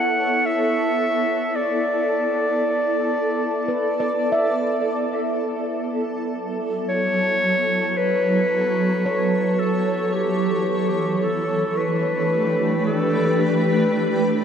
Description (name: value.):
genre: ambient.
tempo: 56 BPM.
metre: 4/4.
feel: straight.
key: B minor.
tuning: A4 = 440 Hz.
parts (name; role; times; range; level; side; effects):
mellow clarinet; melody; 0.0-14.4 s; G4 to F#5; -22 LUFS; left 1 dB; tape echo.
granular cloud pad; sustained chords; 0.0-14.4 s; E3 to D5; -22 LUFS; right 1 dB; built-in reverb.
handpan; arpeggios; 0.0-10.6 s; B4 to E5; -29 LUFS; equal; tape echo.
room: wet huge ambient reverb, RT60 8.9 s.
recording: none.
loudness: -19 LUFS.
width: side -8 dB against mid.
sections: 0.0-14.4 A section.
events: filter sweep on ambient pad 0.0-14.4.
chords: 0.0 A; 1.5 Bm7; 5.8 F#m7; 10.1 Em7.